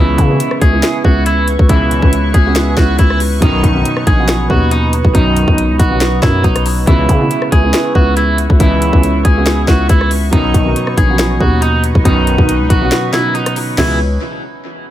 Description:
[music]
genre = hip hop, trap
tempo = 139 BPM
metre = 4/4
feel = half-time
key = C# minor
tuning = A4 = 440 Hz
[part]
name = electric guitar at the edge of break-up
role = melody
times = 0.0-14.0 s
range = D#4 to G#4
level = -18 LUFS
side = right 1 dB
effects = low-pass filter, tape echo
[part]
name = felt-muted upright piano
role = accompaniment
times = 0.0-14.0 s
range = B2 to F#4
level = -18 LUFS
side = right 3 dB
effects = low-pass filter, tape echo
[part]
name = sweeping resonant pad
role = sustained chords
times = 0.0-14.0 s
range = C#4 to C#6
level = -23 LUFS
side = right 1 dB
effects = chorus, phaser
[part]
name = resonant sweep polysynth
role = stabs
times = 0.0-14.0 s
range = C#2 to E3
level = -23 LUFS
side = left 5 dB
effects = chorus, tape echo
[part]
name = growling 808-style bass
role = bass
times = 0.0-14.2 s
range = A#1 to C#3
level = -14 LUFS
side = equal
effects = none
[part]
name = trap drum kit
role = drums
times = 0.2-13.9 s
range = crash cymbal, hi-hat, kick drum, rim click, snare drum, toms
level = -14 LUFS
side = equal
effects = none
[sound]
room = digital ambience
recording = echo-heavy mix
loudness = -10 LUFS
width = side -12 dB against mid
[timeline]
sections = 0.0-13.8 A section; 13.8-14.9 B section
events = break 12.9-13.8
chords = 0.0 C#m7; 3.4 Badd9; 6.9 C#m7; 10.3 Badd9; 13.8 C#m7

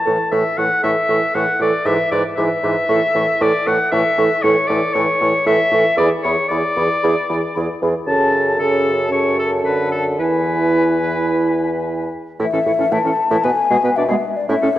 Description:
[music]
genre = quick classical-period movement for wind quintet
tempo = 115 BPM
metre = 4/4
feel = rubato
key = A major from 3.9 s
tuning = A4 = 440 Hz
[part]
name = clear oboe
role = second line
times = 0.0-14.7 s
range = E4 to A5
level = -19 LUFS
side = left 2 dB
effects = none
[part]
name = mellow hollow concert flute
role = melody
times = 0.1-14.8 s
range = D5 to D6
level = -23 LUFS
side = left 4 dB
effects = none
[part]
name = mellow clarinet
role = accompaniment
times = 0.1-14.8 s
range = G#3 to B4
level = -22 LUFS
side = right 3 dB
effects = none
[part]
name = warm French horn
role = accompaniment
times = 0.1-14.8 s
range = C#3 to C#4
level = -23 LUFS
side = equal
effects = none
[part]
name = warm bassoon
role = bass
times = 0.1-14.8 s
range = E2 to B2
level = -21 LUFS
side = right 1 dB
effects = none
[sound]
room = wet concert hall reverb, RT60 2.1 s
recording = worn, warbling old tape, cassette tape, warbly pitch drift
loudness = -14 LUFS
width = side -14 dB against mid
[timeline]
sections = 0.0-12.4 A section; 12.4-14.8 B section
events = none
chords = 0.0 A; 1.9 E7/G#; 2.9 A; 6.0 E7; 8.1 F#m; 10.2 E; 12.4 A; 13.4 G#m/B

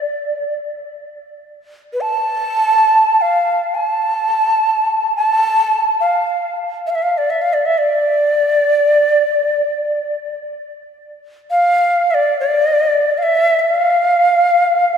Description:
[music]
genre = world meditative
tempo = free time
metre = none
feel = none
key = D minor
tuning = A4 = 440 Hz
[part]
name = breathy Native American-style cedar flute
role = solo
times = 0.0-15.0 s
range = B4 to A5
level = -13 LUFS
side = equal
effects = diffuse ambient delay
[sound]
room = wet lush hall reverb, RT60 2.5 s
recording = dreamy mix soaked in reverb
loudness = -13 LUFS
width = side -7 dB against mid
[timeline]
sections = 0.0-1.1 A section; 1.1-15.0 A section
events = none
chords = none

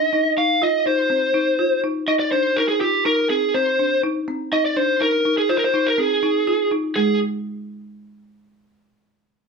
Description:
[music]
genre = progressive instrumental, progressive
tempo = 123 BPM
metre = 5/4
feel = straight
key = unclear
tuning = A4 = 442 Hz
[part]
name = lead guitar through a small cranked amp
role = melody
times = 0.0-7.2 s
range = G4 to F5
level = -18 LUFS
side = equal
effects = overdrive, plate reverb
[part]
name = folk marimba with medium hard mallets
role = arpeggios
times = 0.1-7.2 s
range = Ab3 to F4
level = -24 LUFS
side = left 1 dB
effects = none
[sound]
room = moderate studio reverb, RT60 0.5 s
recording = none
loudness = -17 LUFS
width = side -4 dB against mid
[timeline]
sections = 0.0-7.0 A section; 7.0-9.4 B section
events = none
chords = 0.0 Cmadd11; 7.0 N.C.

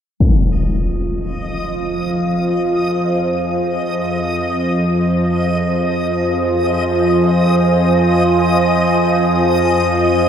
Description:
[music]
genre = dark ambient drone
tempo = free time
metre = none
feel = none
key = F minor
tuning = A4 = 440 Hz
[part]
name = deep dark ambient pad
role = sustained chords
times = 0.7-10.3 s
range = F4 to Ab5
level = -18 LUFS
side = right 1 dB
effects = chorus, built-in reverb
[part]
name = bowed-like drone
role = drone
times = 0.9-10.3 s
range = F2 to F3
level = -18 LUFS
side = equal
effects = built-in reverb
[part]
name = backwards swelling texture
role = texture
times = 1.3-10.3 s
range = Eb5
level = -21 LUFS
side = left 1 dB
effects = built-in reverb
[sound]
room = wet huge ambient reverb, RT60 7.3 s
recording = none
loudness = -14 LUFS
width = side -8 dB against mid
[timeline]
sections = 0.2-10.3 A section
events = none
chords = 0.2 Fm7

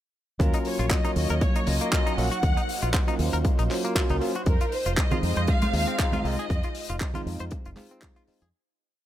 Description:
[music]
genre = nu-disco, nu disco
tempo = 118 BPM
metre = 4/4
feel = swing 55% on 16ths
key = Eb dorian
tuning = A4 = 437 Hz
[part]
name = rich studio violin section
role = melody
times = 0.4-7.0 s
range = Bb4 to Gb5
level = -32 LUFS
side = equal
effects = tape echo
[part]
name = bell-like tine electric piano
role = accompaniment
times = 0.4-8.4 s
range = Gb3 to F4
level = -31 LUFS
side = right 1 dB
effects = phaser, slapback echo
[part]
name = lush unison pad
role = sustained chords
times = 1.0-8.5 s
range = Gb3 to Db5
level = -36 LUFS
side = equal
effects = chorus, phaser, sidechain pumping
[part]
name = fingered electric bass with an envelope filter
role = bass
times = 0.4-8.5 s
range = F1 to F2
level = -27 LUFS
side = equal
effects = none
[part]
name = electronic kick drum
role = drums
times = 0.4-8.1 s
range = none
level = -25 LUFS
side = equal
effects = overdrive
[part]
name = tight funk drum kit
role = drums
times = 0.4-8.5 s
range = handclaps, hi-hat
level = -32 LUFS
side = left 1 dB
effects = none
[part]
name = direct-recorded clean electric guitar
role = riff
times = 0.5-8.5 s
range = Bb3 to C5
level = -35 LUFS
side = left 2 dB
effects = wide subtle chorus
[part]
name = congas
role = percussion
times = 5.1-7.9 s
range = none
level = -32 LUFS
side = right 3 dB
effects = none
[sound]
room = small room ambience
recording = none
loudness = -23 LUFS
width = side -12 dB against mid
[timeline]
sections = 0.4-8.5 drop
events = drop 0.4-8.5; fade-out 5.8-8.5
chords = 0.4 Ebm7; 4.5 Fm7

